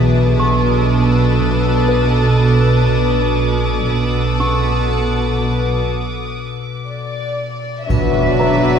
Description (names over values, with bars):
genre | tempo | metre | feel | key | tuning
cinematic, suspense film score | 60 BPM | 4/4 | straight | unclear | A4 = 435 Hz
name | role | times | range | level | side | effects
warm studio violin section | melody | 0.0-8.8 s | D5 to A5 | -25 LUFS | left 2 dB | none
icy glass pad | sustained chords | 0.0-8.8 s | D4 to F#5 | -23 LUFS | equal | chorus, built-in reverb
concert harp | riff | 0.0-8.8 s | B2 to B3 | -20 LUFS | left 8 dB | none
dark studio cello section | bass | 0.0-8.8 s | B2 | -20 LUFS | right 4 dB | none
dark studio double bass section | bass | 0.0-8.8 s | B1 | -19 LUFS | right 4 dB | none
clear studio violin section | texture | 0.0-7.4 s | D6 to D#6 | -27 LUFS | left 1 dB | none
music box | texture | 0.0-8.8 s | C#4 to C#6 | -24 LUFS | right 1 dB | none
clear studio violin section | second line | 7.9-8.8 s | F#4 to B4 | -22 LUFS | right 2 dB | none
warm studio viola section | accompaniment | 7.9-8.8 s | F#3 to D4 | -18 LUFS | right 1 dB | none
solo taiko drums | drums | 7.9-8.8 s | none | -24 LUFS | right 1 dB | none
triangle | percussion | 7.9-8.8 s | none | -45 LUFS | left 3 dB | none
impact | sound effects | 7.9-8.8 s | none | -22 LUFS | right 2 dB | none
room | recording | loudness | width
moderate scoring stage reverb, RT60 1.9 s | worn, warbling old tape, cassette tape, warbly pitch drift | -13 LUFS | side -7 dB against mid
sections
0.0-7.9 A section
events
break 5.9-7.9; impact 7.9-8.8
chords
0.0 Bm7; 7.9 Bm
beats
0.90 1.90 2.90 | 3.90 4.89 5.89 6.89 | 7.89